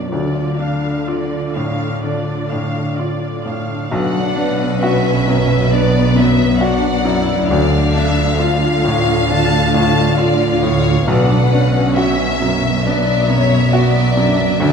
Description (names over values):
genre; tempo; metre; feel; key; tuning
cinematic, emotional film score for orchestra; 67 BPM; 4/4; rubato; unclear; A4 = 440 Hz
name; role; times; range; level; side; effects
bright baby grand piano; accompaniment; 0.0-14.7 s; B1 to F#4; -20 LUFS; equal; none
warm symphonic viola section; accompaniment; 0.0-14.7 s; B3 to F5; -22 LUFS; left 1 dB; none
concert harp; arpeggios; 0.0-14.7 s; B2 to C#6; -22 LUFS; left 4 dB; none
warm symphonic cello section; bass; 0.0-14.7 s; B2 to D3; -21 LUFS; right 4 dB; none
warm symphonic violin section; melody; 3.9-14.7 s; D5 to A5; -22 LUFS; left 2 dB; none
warm symphonic violin section; second line; 3.9-14.7 s; B4 to F5; -21 LUFS; left 5 dB; none
rich symphonic double bass section; bass; 3.9-14.7 s; B1 to D2; -20 LUFS; right 3 dB; none
room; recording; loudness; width
wet scoring stage reverb, RT60 1.8 s; minimal, uncompressed stereo recording; -13 LUFS; side -6 dB against mid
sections
0.0-3.9 A section; 3.9-14.7 A section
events
none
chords
0.1 Dm; 3.9 Bmadd9; 7.5 Dm; 11.1 Bmadd9